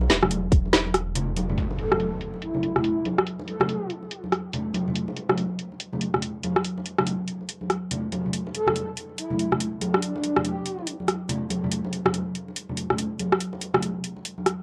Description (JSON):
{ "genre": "deep dubstep", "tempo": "142 BPM", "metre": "4/4", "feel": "swing 61% on 16ths, half-time", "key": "E minor", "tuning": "A4 = 440 Hz", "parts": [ { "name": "soft dub sub bass", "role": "bass", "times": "0.0-1.6 s", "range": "E1", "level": "-30 LUFS", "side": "equal", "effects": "none" }, { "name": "congas", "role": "percussion", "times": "0.0-14.4 s", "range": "none", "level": "-31 LUFS", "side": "equal", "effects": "dub echo" }, { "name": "garage drum kit", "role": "drums", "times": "0.1-14.6 s", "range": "hi-hat, rim click, snare drum", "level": "-25 LUFS", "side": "equal", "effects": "low-pass filter on snare, cassette tape, low-pass filter on hats" }, { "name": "electronic kick drum", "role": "drums", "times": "0.5-0.6 s", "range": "none", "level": "-20 LUFS", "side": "equal", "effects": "cassette tape" }, { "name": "impact", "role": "sound effects", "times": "1.6-3.3 s", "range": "none", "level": "-35 LUFS", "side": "equal", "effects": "none" }, { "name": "breathy flute-like synth lead", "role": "melody", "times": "1.8-3.9, 8.5-10.9 s", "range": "D4 to A4", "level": "-32 LUFS", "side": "equal", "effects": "ensemble chorus, cassette tape, dub echo" } ], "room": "wet small room reverb, RT60 0.5 s", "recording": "home recording on cassette", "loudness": "-26 LUFS", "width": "mono", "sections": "0.0-1.6 A section; 1.6-14.6 B section", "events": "drop 0.0-1.6; impact 1.6-3.3", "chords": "none", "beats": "0.31 0.73 1.15 | 1.57 2.00 2.42 2.84 | 3.27 3.69 4.11 4.53 | 4.96 5.38 5.80 6.22 | 6.65 7.07 7.49 7.91 | 8.34 8.76 9.18 9.60 | 10.03 10.45 10.87 11.29 | 11.72 12.14 12.56 12.98 | 13.41 13.83 14.25" }